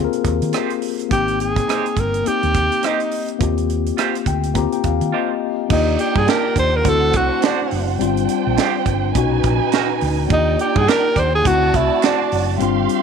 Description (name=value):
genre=lush 1970s-style soul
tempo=104 BPM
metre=4/4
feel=swing 58% on 16ths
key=Eb major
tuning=A4 = 440 Hz
part: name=mellow tine electric piano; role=accompaniment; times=0.0-13.0 s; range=A#2 to Bb5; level=-21 LUFS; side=left 14 dB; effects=medium stereo tremolo
part: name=hollow-body short-scale fingered electric bass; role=bass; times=0.0-12.9 s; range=F#1 to Eb3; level=-21 LUFS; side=right 1 dB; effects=none
part: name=tight funk drum kit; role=drums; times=0.1-13.0 s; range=crash cymbal, hi-hat, kick drum, rim click, snare drum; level=-22 LUFS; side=right 5 dB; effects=none
part: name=electric guitar through a small old amp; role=riff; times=0.5-12.2 s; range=Bb3 to C5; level=-26 LUFS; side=right 14 dB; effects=harmonic tremolo
part: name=breathy tenor saxophone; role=melody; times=1.1-12.5 s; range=D4 to D5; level=-19 LUFS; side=right 1 dB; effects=none
part: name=dark studio violin section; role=second line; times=5.7-13.0 s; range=D4 to C6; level=-23 LUFS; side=right 13 dB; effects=none
room=light reverb, studio reverb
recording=1960s-style stereo with parts hard left and right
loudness=-16 LUFS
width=side -6 dB against mid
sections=0.0-5.7 A section; 5.7-13.0 B section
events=tine electric piano fill 4.0-5.7; break 5.1-5.7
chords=0.0 Eb69; 1.1 Abmaj7; 3.4 Eb69; 5.7 Ebmaj7; 6.9 D7; 8.0 G7sus4; 9.2 Bmaj7; 10.3 Ebmaj7; 11.5 D7